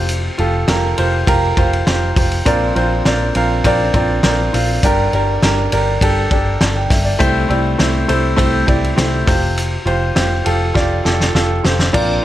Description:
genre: piano-driven pop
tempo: 101 BPM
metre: 4/4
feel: straight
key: unclear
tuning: A4 = 437 Hz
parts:
  - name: clear concert grand piano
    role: accompaniment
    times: 0.0-12.2 s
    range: G2 to A5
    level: -16 LUFS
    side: equal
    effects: none
  - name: vintage muted picked electric bass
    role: bass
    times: 0.0-12.2 s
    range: F1 to C2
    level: -19 LUFS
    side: equal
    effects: none
  - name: loose indie drum kit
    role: drums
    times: 0.1-12.1 s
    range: crash cymbal, hi-hat, kick drum, ride cymbal, snare drum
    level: -18 LUFS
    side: equal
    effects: none
room: light reverb, studio ambience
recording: none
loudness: -13 LUFS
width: side -13 dB against mid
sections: 0.0-11.9 A section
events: drum fill 10.8-11.9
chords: 0.0 Fsus2; 2.5 Bbadd9; 4.8 Gm; 7.2 C6; 9.3 Fsus2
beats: | 0.09 0.68 1.28 1.87 | 2.46 3.05 3.65 4.24 | 4.83 5.42 6.02 6.61 | 7.20 7.79 8.39 8.98 | 9.57 10.16 10.76 11.35 | 11.94

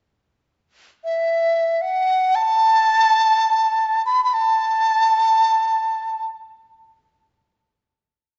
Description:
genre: chinese traditional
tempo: free time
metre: none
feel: none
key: unclear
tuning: A4 = 443 Hz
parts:
  - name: large dizi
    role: melody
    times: 1.0-6.3 s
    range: E5 to B5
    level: -18 LUFS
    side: equal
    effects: none
room: wet scoring stage reverb, RT60 1.7 s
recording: dark, warm production, nothing above 7.8 kHz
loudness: -18 LUFS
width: mono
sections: 0.0-8.4 A section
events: none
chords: none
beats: free time

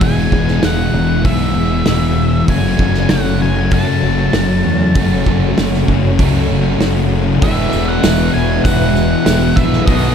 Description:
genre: rock, shoegaze and dream pop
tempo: 97 BPM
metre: 4/4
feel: straight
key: unclear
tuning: A4 = 440 Hz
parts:
  - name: octave-fuzz lead guitar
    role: melody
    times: 0.0-10.1 s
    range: D#5 to A5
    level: -22 LUFS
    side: equal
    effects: distortion, slapback echo
  - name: glassy FM pad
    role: sustained chords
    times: 0.0-10.1 s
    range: G#3 to C#5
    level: -24 LUFS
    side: left 1 dB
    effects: ensemble chorus, built-in reverb
  - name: overdriven semi-hollow guitar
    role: riff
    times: 0.0-10.1 s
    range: E2 to G#4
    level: -20 LUFS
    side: right 11 dB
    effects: reverse reverb
  - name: thick fuzz guitar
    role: riff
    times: 0.0-10.1 s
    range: E2 to B3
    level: -17 LUFS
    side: left 9 dB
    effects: distortion, analog chorus
  - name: fuzz fingered electric bass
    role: bass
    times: 0.0-10.1 s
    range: E1 to F#2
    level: -18 LUFS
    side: equal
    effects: overdrive
  - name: loose indie drum kit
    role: drums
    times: 0.0-10.0 s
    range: hi-hat, kick drum, snare drum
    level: -18 LUFS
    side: right 1 dB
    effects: none
  - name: raw garage guitar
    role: riff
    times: 7.4-10.1 s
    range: E2 to B3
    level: -21 LUFS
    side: right 1 dB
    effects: overdrive
  - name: tambourine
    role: percussion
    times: 7.4-10.0 s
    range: none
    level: -35 LUFS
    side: right 11 dB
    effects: none
room: light reverb, small room ambience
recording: none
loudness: -11 LUFS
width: side -7 dB against mid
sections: 0.0-7.4 A section; 7.4-10.1 B section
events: none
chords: 0.0 E; 2.5 F#m; 7.4 Eadd9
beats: | 0.01 0.64 1.25 1.87 | 2.49 3.11 3.73 4.34 | 4.96 5.58 6.20 6.81 | 7.43 8.04 8.65 9.27 | 9.88

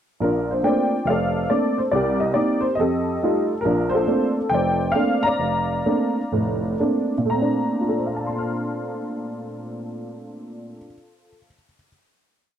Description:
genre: solo jazz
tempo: 119-140 BPM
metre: 4/4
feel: swing 66% on 8ths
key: Bb major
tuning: A4 = 441 Hz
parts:
  - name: honky-tonk upright piano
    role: solo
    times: 0.2-11.9 s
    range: F1 to F6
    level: -20 LUFS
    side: equal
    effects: none
room: little or no reverb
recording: dry, close 1970s-style studio recording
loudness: -19 LUFS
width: side -9 dB against mid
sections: 0.2-7.3 A section; 7.3-11.3 final chord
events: slowing down 3.6-7.3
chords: 0.2 Bbmaj9; 1.9 Cm7; 2.8 F9; 3.6 Bbmaj9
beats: | 0.21 0.63 1.06 1.49 | 1.92 2.35 2.78 3.21 | 3.63 4.07 4.50 4.94 | 5.38 5.84 6.31 6.79 | 7.28 7.79 8.29 8.79 | 9.29 9.79 10.30 10.80

